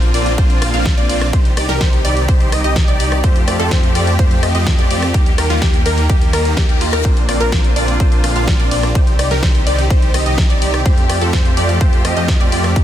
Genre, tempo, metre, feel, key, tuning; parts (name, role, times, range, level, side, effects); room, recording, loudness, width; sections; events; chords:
EDM, festival progressive house; 126 BPM; 4/4; straight; A4 = 438 Hz
clear studio string section; sustained chords; 0.0-12.8 s; D3 to G4; -24 LUFS; equal; sidechain pumping
wide unison pluck; arpeggios; 0.0-12.8 s; F4 to F5; -22 LUFS; equal; wide subtle chorus, sidechain pumping, tape echo
supersaw chords; riff; 0.0-12.8 s; A3 to F5; -20 LUFS; equal; sidechain pumping, tape echo
wide detuned saw bass; bass; 0.0-12.8 s; Bb1 to F2; -19 LUFS; equal; chorus, sidechain pumping
big-room dance drum kit; drums; 0.0-12.8 s; hi-hat, rim click, snare drum; -23 LUFS; left 1 dB
electronic kick drum; drums; 0.4-12.8 s; -14 LUFS; equal; overdrive
reverse cymbal; sound effects; 6.5-7.0 s; -29 LUFS; left 7 dB
digital ambience; dense, heavily limited modern master; -12 LUFS; side -11 dB against mid
0.0-12.8 A section
reverse cymbal 6.5-7.0
0.0 Bbadd9; 1.3 Cm; 3.2 Fadd9; 5.1 Eb; 7.0 Bbadd9; 9.0 Cm; 10.9 Fadd9